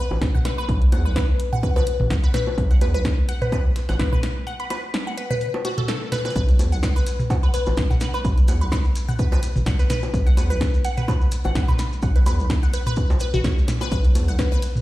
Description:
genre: minimal techno.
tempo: 127 BPM.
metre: 4/4.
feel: swing 55% on 16ths.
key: unclear.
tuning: A4 = 440 Hz.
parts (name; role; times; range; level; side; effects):
resonant blip pluck; riff; 0.0-14.6 s; F#4 to F#5; -28 LUFS; left 1 dB; phaser, sidechain pumping, ping-pong delay.
round analog bass; bass; 0.1-14.4 s; A1 to E2; -20 LUFS; equal; tube saturation, sidechain pumping.
electronic bongos and toms; percussion; 0.1-14.8 s; none; -28 LUFS; equal; digital delay.
dusty soul sampler-style drum kit; drums; 0.2-14.7 s; hi-hat, snare drum; -43 LUFS; equal; none.
electronic kick drum; drums; 0.2-14.5 s; none; -20 LUFS; equal; none.
punchy analog drum machine; drums; 0.2-14.7 s; hi-hat, ride cymbal, snare drum; -30 LUFS; equal; none.
maracas; percussion; 6.4-14.8 s; none; -40 LUFS; left 2 dB; none.
room: light reverb.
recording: played on a big sound system in a bare room, large studio reverb.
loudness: -18 LUFS.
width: side -16 dB against mid.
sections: 0.0-14.8 A section.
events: break 4.5-6.4.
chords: 0.0 B5.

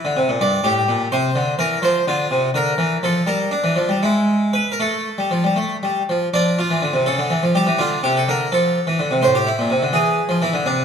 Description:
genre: classical, baroque-style suite movement for harpsichord.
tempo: 78-85 BPM (dotted quarters).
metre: 6/8.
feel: rubato.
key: D minor.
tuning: A4 = 440 Hz.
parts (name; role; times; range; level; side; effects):
harpsichord; solo; 0.0-10.8 s; G2 to D5; -16 LUFS; equal; none.
room: wet recital hall reverb, RT60 1.4 s.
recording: none.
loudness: -16 LUFS.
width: side -7 dB against mid.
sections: 0.0-6.3 A section; 6.3-10.8 A section.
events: none.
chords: 0.4 Gm; 1.1 C; 1.8 F5; 2.6 Bb/D; 3.3 G5; 4.0 N.C.; 4.8 Fadd9; 6.3 Dm/F; 7.1 A7/C#; 7.8 Dm; 9.2 Am; 9.9 E7.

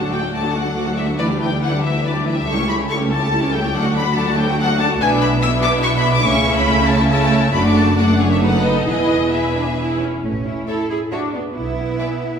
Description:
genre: quick classical-period movement for string orchestra.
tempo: 140 BPM.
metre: 3/4.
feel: rubato.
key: D major, A major from 5.0 s.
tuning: A4 = 440 Hz.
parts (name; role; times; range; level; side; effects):
bright symphonic violin section; second line; 0.0-12.1 s; D4 to F#5; -25 LUFS; left 3 dB; none.
rich symphonic viola section; accompaniment; 0.0-12.4 s; E3 to F#4; -20 LUFS; right 1 dB; none.
clear symphonic double bass section; bass; 0.0-11.9 s; E1 to D2; -23 LUFS; right 1 dB; none.
rich symphonic cello section; bass; 0.0-12.4 s; C#2 to A4; -23 LUFS; right 2 dB; none.
clear symphonic violin section; melody; 0.1-12.1 s; D5 to E6; -21 LUFS; left 3 dB; none.
room: wet recital hall reverb, RT60 1.6 s.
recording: recorded in a church or concert hall.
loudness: -15 LUFS.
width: side -7 dB against mid.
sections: 0.0-10.2 A section; 10.2-12.4 B section.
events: none.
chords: 0.0 D; 1.2 Em7/D; 2.5 A7/C#; 3.7 D; 5.0 E5/B; 6.3 A/C#; 7.5 D/F#; 8.4 B7/F#; 8.9 E; 10.2 A; 11.6 E5/B.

